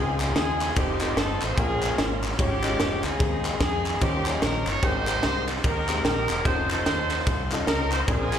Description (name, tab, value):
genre	uptempo gospel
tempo	148 BPM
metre	4/4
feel	swing 61% on 8ths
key	unclear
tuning	A4 = 436 Hz
part	warm horn section	melody	0.0-8.4 s	Bb3 to Db5	-28 LUFS	right 1 dB	slapback echo, plate reverb
part	warm grand piano	accompaniment	0.0-8.4 s	Ab2 to Eb5	-32 LUFS	left 5 dB	plate reverb, slapback echo
part	bright tonewheel organ	sustained chords	0.0-8.4 s	Db3 to C5	-35 LUFS	right 3 dB	slow rotary speaker, overdrive, chorus vibrato, plate reverb
part	fingered electric bass with an envelope filter	bass	0.0-8.4 s	Fb1 to F2	-30 LUFS	equal	none
part	crisp fusion drum kit	drums	0.2-8.4 s	kick drum, ride cymbal, snare drum	-27 LUFS	equal	none
part	group handclap	percussion	0.2-8.4 s	none	-33 LUFS	left 1 dB	none
room	moderate club reverb, RT60 0.6 s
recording	live gig heard through the venue's PA, recital hall reverb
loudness	-22 LUFS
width	side -9 dB against mid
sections	0.0-8.4 A section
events	none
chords	0.0 Dbmaj9; 0.8 F7; 1.6 Bbm7; 2.4 Db/Ab; 3.2 Ab/Eb; 4.0 Eb13; 4.8 Abmaj9; 6.5 F7b13